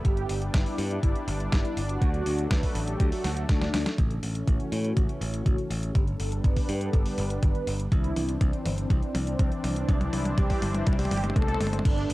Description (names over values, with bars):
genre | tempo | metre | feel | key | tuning
italo disco | 122 BPM | 4/4 | straight | unclear | A4 = 440 Hz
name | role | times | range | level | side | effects
mellow synth brass | melody | 0.0-12.1 s | C4 to B4 | -34 LUFS | equal | chorus, analog delay
lush unison pad | sustained chords | 0.0-12.1 s | E3 to D4 | -34 LUFS | equal | chorus
modern bright picked electric bass | bass | 0.0-12.1 s | G1 to A2 | -30 LUFS | equal | none
clean 12-bit digital drum machine | drums | 0.0-12.1 s | crash cymbal, hi-hat, snare drum, toms | -33 LUFS | equal | overdrive
electronic kick drum | drums | 0.0-12.0 s | none | -24 LUFS | equal | overdrive
room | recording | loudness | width
little or no reverb | dry, gritty hardware recording, cassette tape | -24 LUFS | side -18 dB against mid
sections
0.0-4.0 A section; 4.0-11.9 B section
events
drum fill 3.2-4.0, 4.0-11.9; filter sweep on analog synth pad 4.0-11.9; filter sweep on analog polysynth 4.0-11.9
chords
0.1 G; 2.0 D; 4.0 A; 6.0 G; 7.9 Cadd9